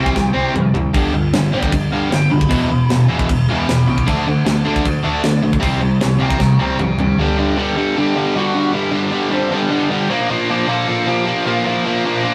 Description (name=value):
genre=punk rock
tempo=154 BPM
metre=4/4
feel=straight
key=unclear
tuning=A4 = 442 Hz
part: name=lead guitar through a small cranked amp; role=melody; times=0.0-12.3 s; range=B3 to B5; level=-27 LUFS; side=equal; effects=overdrive, digital delay
part: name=cranked stack guitar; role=riff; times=0.0-12.3 s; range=E2 to D4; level=-18 LUFS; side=equal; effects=overdrive
part: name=overdriven picked electric bass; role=bass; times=0.0-7.2 s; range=E1 to D2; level=-26 LUFS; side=equal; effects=none
part: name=tight metal drum kit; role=drums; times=0.1-7.1 s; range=crash cymbal, kick drum, snare drum, toms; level=-23 LUFS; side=equal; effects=none
room=light reverb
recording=rough rehearsal-room recording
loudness=-17 LUFS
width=mono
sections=0.0-7.2 A section; 7.2-12.3 B section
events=lead electric guitar solo 0.0-7.2; drum fill 0.2-0.9, 6.4-7.2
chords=0.0 C5; 0.9 G5; 2.5 Em; 4.1 D; 5.6 C5; 7.2 G; 10.1 Bb